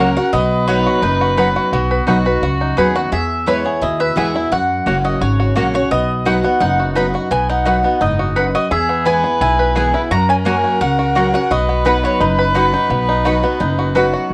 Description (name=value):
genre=bluegrass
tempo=172 BPM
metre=4/4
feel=straight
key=B major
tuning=A4 = 441 Hz
part: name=mandolin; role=melody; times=0.0-13.9 s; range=B4 to A#5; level=-22 LUFS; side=equal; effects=none
part: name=clear fiddle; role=second line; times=0.0-3.1, 8.7-14.3 s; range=F#4 to B4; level=-23 LUFS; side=equal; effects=none
part: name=picked steel-string acoustic guitar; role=accompaniment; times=0.0-14.3 s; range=E2 to F#4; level=-23 LUFS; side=equal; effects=none
part: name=bluegrass banjo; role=arpeggios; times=0.0-14.3 s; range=B3 to B4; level=-22 LUFS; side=equal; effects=none
part: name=mandolin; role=stabs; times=0.0-14.1 s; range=A#3 to B5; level=-23 LUFS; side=equal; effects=none
part: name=upright bass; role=bass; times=0.0-14.3 s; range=F#1 to F#2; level=-23 LUFS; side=equal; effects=none
room=moderate studio ambience, RT60 0.5 s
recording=worn, warbling old tape, cassette tape, warbly pitch drift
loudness=-16 LUFS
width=mono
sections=0.0-3.1 A section; 3.1-14.3 A section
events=none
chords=0.3 B; 3.1 E; 4.5 F#; 5.9 B; 8.7 E; 10.1 F#; 11.5 B